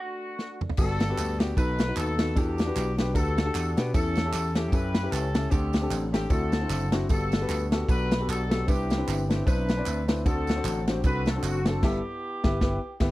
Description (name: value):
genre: uptempo gospel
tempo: 152 BPM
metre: 4/4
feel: swing 57% on 8ths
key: G major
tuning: A4 = 440 Hz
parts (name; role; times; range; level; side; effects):
- bowl-back mandolin; melody; 0.0-0.6 s; F#4; -38 LUFS; right 3 dB; none
- warm horn section; melody; 0.0-13.0 s; A3 to B4; -32 LUFS; left 1 dB; none
- natural country drum kit; drums; 0.4-13.1 s; crash cymbal, kick drum, ride cymbal, snare drum, toms; -26 LUFS; equal; none
- warm grand piano; accompaniment; 0.8-13.1 s; G2 to D5; -31 LUFS; left 2 dB; none
- vintage slap bass; bass; 0.8-13.1 s; F#1 to B2; -29 LUFS; equal; none
- tambourine and handclaps; percussion; 0.8-11.7 s; none; -41 LUFS; right 9 dB; none
room: little or no reverb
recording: dry, close 1970s-style studio recording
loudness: -24 LUFS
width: side -17 dB against mid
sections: 0.8-13.1 A section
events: stop 0.0-0.8; drum fill 0.4-0.8; band accent 11.8-13.1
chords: 0.0 D; 0.8 Gmaj9; 1.6 B7; 2.4 Em11; 3.9 A7/E; 5.5 D7sus4; 6.3 D9; 7.1 Gmaj9; 8.7 Cmaj9; 10.3 D7; 11.8 G6